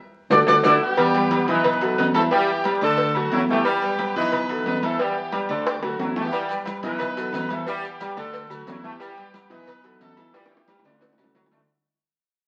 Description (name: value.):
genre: latin, salsa.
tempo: 179 BPM.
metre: 4/4.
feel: straight.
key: E minor.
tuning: A4 = 445 Hz.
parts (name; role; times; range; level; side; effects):
mellow trumpet; melody; 0.3-0.7 s; D5; -19 LUFS; equal; none.
bright baby grand piano; accompaniment; 0.3-11.7 s; D3 to E5; -29 LUFS; equal; none.
fingered electric bass; bass; 0.3-11.6 s; B1 to E2; -30 LUFS; equal; none.
congas; percussion; 0.3-11.7 s; none; -37 LUFS; equal; none.
cowbell and bongos; percussion; 0.3-11.7 s; none; -30 LUFS; equal; none.
maracas; percussion; 0.3-0.7, 6.3-11.7 s; none; -46 LUFS; equal; none.
timbales and agogo bells; percussion; 0.3-11.6 s; none; -32 LUFS; equal; none.
bright horn section; melody; 0.7-11.3 s; A3 to B4; -28 LUFS; equal; none.
bright trombone section; second line; 1.0-11.6 s; E3 to A3; -29 LUFS; equal; none.
room: wet studio reverb, RT60 0.8 s.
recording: very old 78 rpm record, vinyl crackle.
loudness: -22 LUFS.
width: mono.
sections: 1.0-11.7 A section.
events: band accent 0.0-1.0; drum fill 0.3-1.0, 5.7-6.3, 10.3-11.7; fade-out 1.0-11.7.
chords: 0.3 D; 1.0 Em; 1.6 B7; 2.3 Em; 3.0 D; 3.7 Em; 4.3 B7; 5.0 Em; 5.7 D; 6.3 Em; 7.0 B7; 7.7 Em; 8.3 D; 9.0 Em; 9.7 B7; 10.3 Em; 11.0 D.